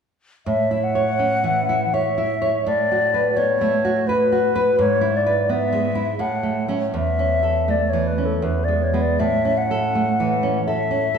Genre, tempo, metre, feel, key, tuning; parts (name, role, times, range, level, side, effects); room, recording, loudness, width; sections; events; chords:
romantic duo for flute and classical guitar; 83 BPM; 3/4; uneven beats, rubato; A major; A4 = 440 Hz
mellow silver concert flute; melody; 0.5-11.2 s; A4 to F#5; -21 LUFS; left 3 dB
nylon-string guitar; accompaniment; 0.5-11.2 s; E2 to C#5; -20 LUFS; right 2 dB
wet recital hall reverb, RT60 1.5 s; recorded in a church or concert hall; -18 LUFS; side -6 dB against mid
0.5-11.2 A section
0.5 A; 2.7 Bm7/A; 4.8 E/G#; 6.2 A; 6.9 A/E; 8.4 E; 9.2 A